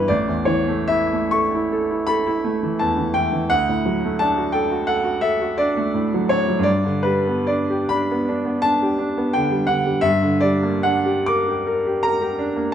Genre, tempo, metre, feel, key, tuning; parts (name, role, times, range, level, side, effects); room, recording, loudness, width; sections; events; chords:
classical, romantic nocturne for solo piano; 45-59 BPM (dotted quarters); 9/8; rubato; A4 = 437 Hz
bright grand piano; solo; 0.0-12.7 s; A1 to D6; -18 LUFS; equal
moderate stone room reverb, RT60 1.0 s; dark, warm production, nothing above 10.4 kHz; -18 LUFS; side -9 dB against mid
0.0-12.7 A section
0.1 A; 3.5 D; 6.7 G; 10.0 Gm